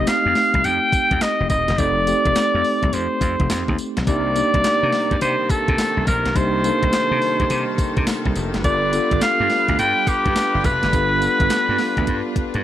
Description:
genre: R&B, new jack swing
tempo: 105 BPM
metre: 4/4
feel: swing 64% on 16ths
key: C dorian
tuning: A4 = 438 Hz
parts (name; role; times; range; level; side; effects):
- bright alto saxophone; melody; 0.0-12.6 s; G4 to G5; -19 LUFS; equal; none
- mellow tine electric piano; accompaniment; 0.0-12.6 s; A3 to A4; -24 LUFS; equal; medium stereo tremolo
- slap bass; bass; 0.0-12.6 s; Eb1 to C3; -24 LUFS; equal; none
- clean 12-bit digital drum machine; drums; 0.1-12.6 s; handclaps, hi-hat, kick drum, snare drum, tambourine; -23 LUFS; equal; overdrive
- bright studio string section; sustained chords; 4.1-12.6 s; C3 to B4; -28 LUFS; left 2 dB; none
room: light reverb, digital ambience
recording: none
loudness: -16 LUFS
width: side -12 dB against mid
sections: 0.0-12.6 A section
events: drum fill 12.1-12.6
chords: 0.0 F7; 4.1 Cm7; 8.6 G7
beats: 0.07 0.64 1.21 | 1.78 2.36 2.93 3.50 | 4.07 4.64 5.21 5.79 | 6.36 6.93 7.50 8.07 | 8.64 9.21 9.79 10.36 | 10.93 11.50 12.07

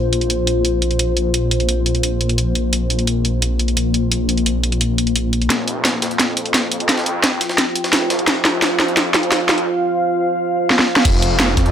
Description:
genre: dark technical drum and bass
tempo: 173 BPM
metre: 4/4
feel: straight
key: unclear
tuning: A4 = 440 Hz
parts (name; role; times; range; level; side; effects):
- deep dark ambient pad; sustained chords; 0.0-11.7 s; Bb3 to G5; -20 LUFS; left 1 dB; chorus, built-in reverb, sidechain pumping
- wide detuned saw bass; bass; 0.0-11.7 s; F1 to F2; -20 LUFS; equal; chorus, overdrive, sidechain pumping, high-pass filter
- drum and bass drum kit; drums; 0.1-11.6 s; crash cymbal, hi-hat, snare drum; -17 LUFS; equal; none
- jungle sampler-style drum kit; drums; 5.5-11.7 s; hi-hat, snare drum; -24 LUFS; equal; high-pass filter on hats, high-pass filter on snare
- electronic kick drum; drums; 11.1-11.6 s; none; -16 LUFS; equal; none
room: light reverb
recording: none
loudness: -15 LUFS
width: side -9 dB against mid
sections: 0.0-5.5 A section; 5.5-11.1 B section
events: build-up 5.5-11.1; drum fill 5.5-9.7, 10.7-11.1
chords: 0.0 Bb5; 5.5 F5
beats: 0.30 0.65 0.99 | 1.34 1.69 2.03 2.38 | 2.73 3.08 3.42 3.77 | 4.12 4.46 4.81 5.16 | 5.50 5.85 6.20 6.54 | 6.89 7.24 7.58 7.93 | 8.28 8.62 8.97 9.32 | 9.66 10.01 10.36 10.71 | 11.05 11.40

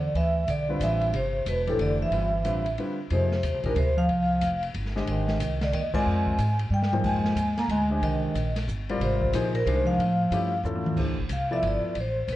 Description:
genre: modal jazz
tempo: 183 BPM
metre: 3/4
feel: swing 64% on 8ths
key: F dorian from 3.1 s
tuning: A4 = 444 Hz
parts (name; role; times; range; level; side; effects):
- vibraphone with medium mallets; melody; 0.0-12.4 s; A4 to Bb5; -28 LUFS; equal; none
- mellow bass clarinet; second line; 0.0-10.6 s; A2 to Bb3; -29 LUFS; right 1 dB; none
- upright bass; bass; 0.0-12.4 s; E1 to A2; -28 LUFS; equal; none
- open jazz drum kit; drums; 0.2-12.4 s; crash cymbal, hi-hat, kick drum, ride cymbal, snare drum, toms; -35 LUFS; equal; none
- warm concert grand piano; accompaniment; 0.7-11.9 s; D3 to E5; -31 LUFS; left 3 dB; none
room: light reverb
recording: worn, warbling old tape, cassette tape, warbly pitch drift, nothing above 10.6 kHz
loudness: -23 LUFS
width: side -15 dB against mid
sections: 0.0-3.1 A section; 3.1-11.0 B section; 11.0-12.4 C section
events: break 2.8-3.1; band accent 5.9; drum fill 6.7-7.0, 10.6-11.0; vibraphone solo 11.0-12.4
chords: 0.0 Dm9; 1.1 C6; 3.1 Fm11; 10.0 A7b13; 11.0 Dm9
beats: | 0.15 0.48 0.81 | 1.13 1.46 1.79 | 2.12 2.45 2.77 | 3.10 3.43 3.76 | 4.09 4.42 4.75 | 5.07 5.40 5.73 | 6.06 6.39 6.71 | 7.04 7.37 7.70 | 8.03 8.35 8.68 | 9.01 9.34 9.66 | 9.99 10.32 10.64 | 10.97 11.30 11.63 | 11.96 12.28

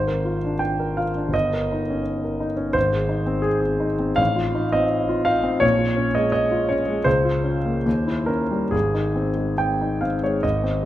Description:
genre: classical, romantic character piece for solo piano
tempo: 67-88 BPM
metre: 2/4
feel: rubato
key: Ab major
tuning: A4 = 439 Hz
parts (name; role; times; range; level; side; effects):
- clear grand piano; solo; 0.0-10.9 s; G1 to G5; -19 LUFS; equal; none
room: moderate recital hall reverb, RT60 1.8 s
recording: none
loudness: -19 LUFS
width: side -13 dB against mid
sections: 0.0-10.4 A section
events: none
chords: 0.0 Bb7/Ab; 1.3 Eb7/G; 2.8 Ab; 4.2 F7/A; 5.6 Bbm7; 7.1 Bbm/Db; 7.9 Eb7b9; 8.7 Ab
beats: 0.60 | 1.34 2.06 | 2.75 3.46 | 4.20 4.92 | 5.63 6.33 | 7.06 7.85 | 8.73 9.60 | 10.44

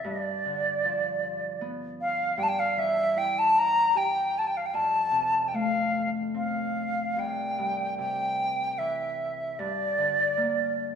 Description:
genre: celtic folk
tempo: 76 BPM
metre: 3/4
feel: uneven beats, rubato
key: unclear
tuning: A4 = 439 Hz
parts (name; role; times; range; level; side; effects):
- wooden flute; melody; 0.0-10.9 s; D5 to Bb5; -25 LUFS; equal; none
- Celtic harp; accompaniment; 0.0-11.0 s; C2 to G4; -33 LUFS; left 2 dB; none
room: moderate scoring stage reverb, RT60 1.8 s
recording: recorded in a church or concert hall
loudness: -24 LUFS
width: side -7 dB against mid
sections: 0.0-11.0 A section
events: none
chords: 0.1 G7; 2.4 G5; 4.7 F; 7.2 C; 9.6 Gm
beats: | 0.06 0.85 1.62 | 2.38 3.16 3.94 | 4.73 5.53 6.35 | 7.18 7.98 8.79 | 9.59 10.38

